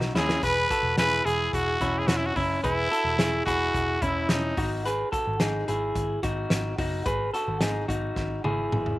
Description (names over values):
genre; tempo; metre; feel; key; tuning
jangly indie pop; 109 BPM; 4/4; straight; E major; A4 = 441 Hz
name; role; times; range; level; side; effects
electric guitar through a small old amp; arpeggios; 0.0-9.0 s; C#4 to B4; -28 LUFS; equal; none
vintage muted picked electric bass; bass; 0.0-8.9 s; E1 to D#2; -31 LUFS; equal; none
loose indie drum kit; drums; 0.0-9.0 s; hi-hat, kick drum, snare drum, toms; -30 LUFS; equal; none
growling trumpet; melody; 0.2-4.7 s; D#4 to B4; -26 LUFS; equal; none
room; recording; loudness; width
little or no reverb; vinyl crackle; -23 LUFS; side -17 dB against mid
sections
0.4-9.0 A section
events
drum fill 0.0-0.4, 8.2-9.0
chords
0.4 E; 4.6 G#m